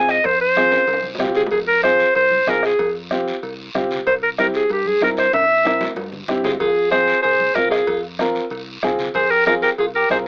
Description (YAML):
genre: latin, cumbia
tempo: 189 BPM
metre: 4/4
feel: straight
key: F harmonic minor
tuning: A4 = 440 Hz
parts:
  - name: clear clarinet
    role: melody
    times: 0.0-10.2 s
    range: G4 to Ab5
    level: -18 LUFS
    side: equal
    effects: cassette tape
  - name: clear upright piano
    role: accompaniment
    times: 0.0-10.3 s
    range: C4 to Bb4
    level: -25 LUFS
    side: equal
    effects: cassette tape
  - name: fingered electric bass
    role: bass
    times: 0.0-10.3 s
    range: C2 to G2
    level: -39 LUFS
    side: equal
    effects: none
  - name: bombo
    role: percussion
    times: 0.1-10.3 s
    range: none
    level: -29 LUFS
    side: equal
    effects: none
  - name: guiro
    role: percussion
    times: 0.1-10.3 s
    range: none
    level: -35 LUFS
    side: equal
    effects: none
  - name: cowbell and timbales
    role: percussion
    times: 0.2-9.9 s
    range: none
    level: -32 LUFS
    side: equal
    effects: none
  - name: congas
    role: percussion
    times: 0.6-10.3 s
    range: none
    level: -39 LUFS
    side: equal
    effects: none
  - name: semi-hollow electric guitar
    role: second line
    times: 6.5-10.2 s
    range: F4 to Ab4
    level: -29 LUFS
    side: equal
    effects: cassette tape
room: moderate booth ambience, RT60 0.2 s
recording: home recording on cassette, AM radio sound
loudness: -18 LUFS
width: mono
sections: 0.0-1.5 A section; 1.5-10.3 B section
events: clarinet solo 0.0-1.5; drum fill 0.7-1.5, 5.3-6.6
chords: 0.0 Fm; 4.1 C7; 6.6 Fm